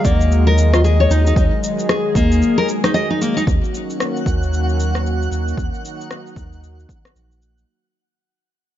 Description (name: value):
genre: organic downtempo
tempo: 114 BPM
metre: 4/4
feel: swing 59% on 16ths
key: Eb minor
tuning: A4 = 440 Hz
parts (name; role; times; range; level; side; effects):
- bright reedy bass bansuri; melody; 0.0-2.9 s; Eb5; -26 LUFS; left 1 dB; digital delay
- warm analog pad; sustained chords; 0.0-7.7 s; Eb3 to Ab4; -24 LUFS; equal; chorus, sidechain pumping
- nylon-string guitar; arpeggios; 0.0-3.4 s; Bb3 to Eb5; -18 LUFS; left 2 dB; ping-pong delay
- warm sub bass; bass; 0.0-7.6 s; Bb1 to Eb2; -16 LUFS; equal; sidechain pumping
- electronic cabasa and rim click; drums; 0.0-7.7 s; none; -25 LUFS; left 2 dB; none
- electronic kick drum; drums; 0.0-7.0 s; none; -19 LUFS; equal; none
- twinkling granular texture; texture; 3.5-7.7 s; Gb5; -32 LUFS; right 2 dB; built-in reverb
room: light reverb, digital ambience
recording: nothing above 7.5 kHz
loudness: -14 LUFS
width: side -12 dB against mid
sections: 0.0-3.5 A section; 3.5-7.7 B section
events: fade-out 3.5-7.7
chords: 0.0 Ab5/Eb; 3.5 Ebm7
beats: 0.31 0.84 | 1.36 1.89 2.42 2.94 | 3.47 4.00 4.52 5.05 | 5.58 6.10 6.63 7.15